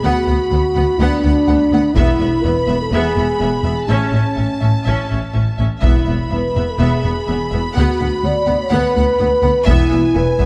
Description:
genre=cinematic, epic orchestral film score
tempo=124 BPM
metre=4/4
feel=straight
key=unclear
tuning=A4 = 440 Hz
part: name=rich studio violin section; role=melody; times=0.0-10.5 s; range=G#5 to B5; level=-30 LUFS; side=equal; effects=none
part: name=warm symphonic violin section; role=second line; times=0.0-10.5 s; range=E5 to F#5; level=-30 LUFS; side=equal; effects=none
part: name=bright symphonic viola section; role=accompaniment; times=0.0-10.5 s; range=B3 to C#4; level=-27 LUFS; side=equal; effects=none
part: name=mellow French horn section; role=sustained chords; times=0.0-10.5 s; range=C#4 to D5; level=-20 LUFS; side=equal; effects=none
part: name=clear symphonic double bass section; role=bass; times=0.0-10.5 s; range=E1 to D2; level=-23 LUFS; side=equal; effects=none
part: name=rich symphonic cello section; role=bass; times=0.0-10.5 s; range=D2 to A2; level=-23 LUFS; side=equal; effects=none
part: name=solo taiko drums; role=drums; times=2.0-2.9, 5.8-6.8, 9.7-10.5 s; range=none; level=-20 LUFS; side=equal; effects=none
room=moderate scoring stage reverb, RT60 1.8 s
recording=dark, warm production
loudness=-16 LUFS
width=mono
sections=0.0-10.5 A section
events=none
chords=0.0 Bm/D; 2.0 E; 3.9 A; 5.8 E; 7.8 Bm/D; 9.7 E

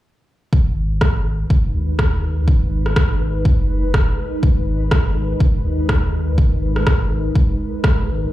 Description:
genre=afro house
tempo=123 BPM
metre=4/4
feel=swing 57% on 16ths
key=G# minor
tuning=A4 = 440 Hz
part: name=ethereal airy pad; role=sustained chords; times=1.5-8.3 s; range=G#3 to B4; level=-26 LUFS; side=equal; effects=ensemble chorus, built-in reverb, sidechain pumping
part: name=warm sub bass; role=bass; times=0.5-8.3 s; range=F#1 to D#2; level=-20 LUFS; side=equal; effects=sidechain pumping
part: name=electronic kick drum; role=drums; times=0.5-8.0 s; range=none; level=-16 LUFS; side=equal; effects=none
part: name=electronic rim click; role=drums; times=1.0-8.0 s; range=none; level=-23 LUFS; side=equal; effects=overdrive
room=digital ambience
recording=played on a big sound system in a bare room, large studio reverb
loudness=-15 LUFS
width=side -15 dB against mid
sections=0.5-8.3 A section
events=none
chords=0.5 G#madd9

